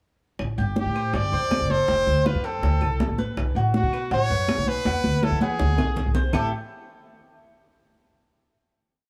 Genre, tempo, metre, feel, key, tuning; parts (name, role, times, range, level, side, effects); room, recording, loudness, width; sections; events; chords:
latin, Cuban son and guajira; 162 BPM; 4/4; straight; A minor; A4 = 444 Hz
upright bass; bass; 0.4-6.5 s; F1 to E3; -27 LUFS; equal
bongos; percussion; 0.4-6.4 s; -34 LUFS; equal
claves; percussion; 0.4-6.4 s; -43 LUFS; equal
congas; percussion; 0.4-6.4 s; -31 LUFS; equal
Cuban tres; arpeggios; 0.6-6.5 s; A3 to C5; -33 LUFS; equal
brilliant trumpet; melody; 0.8-6.5 s; F#4 to D5; -28 LUFS; equal
light reverb; -23 LUFS; mono
0.4-6.3 verse; 6.3-7.8 final chord
drum fill 4.9-6.3
0.4 Am7; 1.9 F; 3.4 B5; 4.9 E; 6.3 A5